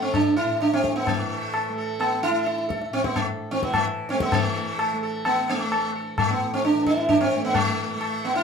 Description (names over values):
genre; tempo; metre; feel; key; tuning
indian classical, Hindustani; 130 BPM; 7/4; straight; A raga kafi; A4 = 440 Hz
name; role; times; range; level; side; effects
sitar; melody; 0.0-8.4 s; A3 to A4; -23 LUFS; right 1 dB; none
tanpura; drone; 0.0-8.4 s; A2 to A3; -33 LUFS; right 1 dB; none
tabla; percussion; 0.1-8.2 s; none; -27 LUFS; left 4 dB; none
room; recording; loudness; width
moderate studio reverb, RT60 0.6 s; minimal, uncompressed stereo recording; -21 LUFS; side -6 dB against mid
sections
0.0-4.3 A section; 4.3-8.4 B section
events
none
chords
none